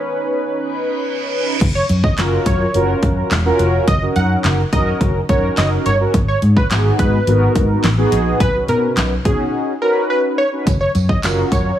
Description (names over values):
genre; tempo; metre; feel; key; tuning
dance-pop; 106 BPM; 4/4; straight; F# major; A4 = 440 Hz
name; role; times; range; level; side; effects
mellow synth brass; accompaniment; 0.0-11.7 s; B3 to B4; -19 LUFS; equal; chorus, sidechain pumping
lush unison pad; sustained chords; 0.0-1.6 s; D#3 to C#4; -29 LUFS; right 3 dB; chorus, sidechain pumping
reverse cymbal; sound effects; 0.8-1.6 s; none; -27 LUFS; right 5 dB; none
vintage muted fingered electric bass; bass; 1.6-11.7 s; E1 to B2; -18 LUFS; equal; sidechain pumping
pop drum kit; drums; 1.6-11.6 s; crash cymbal, handclaps, hi-hat, kick drum, snare drum; -18 LUFS; equal; none
plucky unison lead; melody; 1.8-11.8 s; G#4 to F#5; -20 LUFS; right 1 dB; sidechain pumping, tape echo
tambourine; percussion; 10.7-11.6 s; none; -34 LUFS; right 8 dB; none
room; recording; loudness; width
digital ambience; none; -14 LUFS; side -11 dB against mid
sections
0.0-1.6 A section; 1.6-11.8 B section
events
reverse cymbal 0.8-1.6; drop 1.6-11.8; drums muted 9.5-10.7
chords
0.0 Badd9; 1.6 F#maj7; 3.9 D#m7/F#; 6.1 G#m7; 8.4 Badd9; 10.7 F#maj7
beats
0.48 1.05 | 1.61 2.18 2.74 3.31 | 3.88 4.44 5.01 5.57 | 6.14 6.71 7.27 7.84 | 8.40 8.97 9.54 10.10 | 10.67 11.23